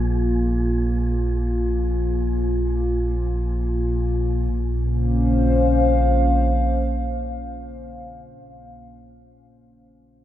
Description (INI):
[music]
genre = dark ambient drone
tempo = free time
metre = none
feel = none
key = Bb minor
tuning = A4 = 445 Hz
[part]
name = dark analog pad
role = sustained chords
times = 0.0-8.4 s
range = Bb3 to F5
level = -23 LUFS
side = left 1 dB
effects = wide subtle chorus
[part]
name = deep rumbling drone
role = drone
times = 0.0-7.9 s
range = Bb1 to Bb2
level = -22 LUFS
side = right 1 dB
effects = built-in reverb, wide subtle chorus
[part]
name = wind-like tuned noise texture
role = texture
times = 0.0-4.5 s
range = Ab4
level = -44 LUFS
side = right 3 dB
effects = built-in reverb
[sound]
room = wet cathedral reverb, RT60 5.7 s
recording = none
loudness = -19 LUFS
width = side -12 dB against mid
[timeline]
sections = 0.0-4.5 A section; 4.5-8.7 B section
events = none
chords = 0.0 Bbsus2; 4.5 Bbmadd9